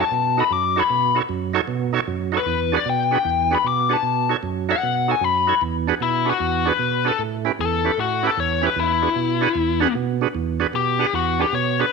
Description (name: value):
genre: blues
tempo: 152 BPM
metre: 4/4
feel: swing 67% on 8ths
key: unclear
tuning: A4 = 440 Hz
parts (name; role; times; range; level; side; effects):
- biting lead guitar; melody; 0.0-11.9 s; E4 to D6; -20 LUFS; left 9 dB; overdrive, slapback echo
- overdriven tonewheel organ; accompaniment; 0.0-11.9 s; E2 to D#5; -22 LUFS; right 9 dB; slow rotary speaker
room: moderate echo chamber reverb, RT60 1.4 s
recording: 1960s-style stereo with parts hard left and right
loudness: -18 LUFS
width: side -4 dB against mid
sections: 0.0-5.6 A section; 5.6-11.9 B section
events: lead electric guitar solo 5.6-11.9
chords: 0.0 B9; 2.5 E9; 4.0 B9; 5.6 E9; 7.2 A9; 8.8 E9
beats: 0.11 0.50 | 0.89 1.29 1.68 2.07 | 2.47 2.86 3.25 3.65 | 4.04 4.43 4.83 5.22 | 5.62 6.01 6.40 6.80 | 7.19 7.58 7.98 8.37 | 8.77 9.16 9.55 9.95 | 10.34 10.74 11.13 11.53 | 11.92